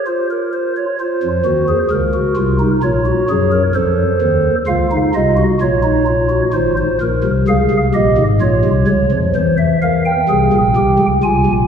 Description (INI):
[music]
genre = classical, baroque-style 3-part fugue for pipe organ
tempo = 64 BPM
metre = 3/4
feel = straight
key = Bb minor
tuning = A4 = 440 Hz
[part]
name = pipe organ, stopped flute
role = solo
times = 0.0-11.7 s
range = Ab1 to Ab5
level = -12 LUFS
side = equal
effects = none
[sound]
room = wet church reverb, RT60 2.9 s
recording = heard from further back in the room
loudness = -12 LUFS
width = side -7 dB against mid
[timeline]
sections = 0.0-11.7 A section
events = none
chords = 0.1 F5; 1.0 Bbm; 2.8 Gbmaj9/Bb; 3.8 F7; 5.6 Bbm; 6.5 Fm/Ab; 8.4 Bbm; 9.4 C7/E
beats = 0.07 | 0.98 1.91 2.83 | 3.76 4.69 5.61 | 6.55 7.48 8.42 | 9.35 10.29 11.22